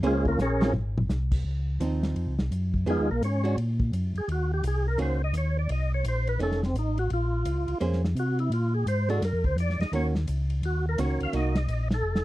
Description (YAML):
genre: soul jazz organ trio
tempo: 170 BPM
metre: 4/4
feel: swing 63% on 8ths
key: Bb minor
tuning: A4 = 436 Hz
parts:
  - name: archtop guitar, miked and amplified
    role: accompaniment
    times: 0.0-11.5 s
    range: Eb3 to C5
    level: -29 LUFS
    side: right 3 dB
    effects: none
  - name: mellow tonewheel organ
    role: bass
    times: 0.0-12.2 s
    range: F1 to C3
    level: -26 LUFS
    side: equal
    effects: chorus vibrato, slow rotary speaker
  - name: warm soul drum kit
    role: drums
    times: 0.0-12.2 s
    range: crash cymbal, hi-hat, kick drum, ride cymbal, snare drum, toms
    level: -32 LUFS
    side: equal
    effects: none
  - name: percussive tonewheel organ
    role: melody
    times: 0.1-0.7, 2.9-12.2 s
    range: Ab3 to F5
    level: -30 LUFS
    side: equal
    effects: slow rotary speaker, overdrive, chorus vibrato
room: small room ambience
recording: dry, close 1970s-style studio recording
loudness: -24 LUFS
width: side -16 dB against mid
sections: 0.0-1.5 A section; 1.5-12.2 A section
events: tonewheel organ solo 0.0-12.2; drum fill 0.4-1.1, 12.0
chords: 0.0 Bbm9; 0.7 Ab; 1.5 Dbmaj9; 2.9 Fm7b5; 3.6 Gbadd9; 4.3 Ebm7; 5.7 Bbmadd9; 6.4 F7b13; 7.1 Bbm9; 8.5 Bb7b13; 9.9 Ebm7; 11.3 Cm7b5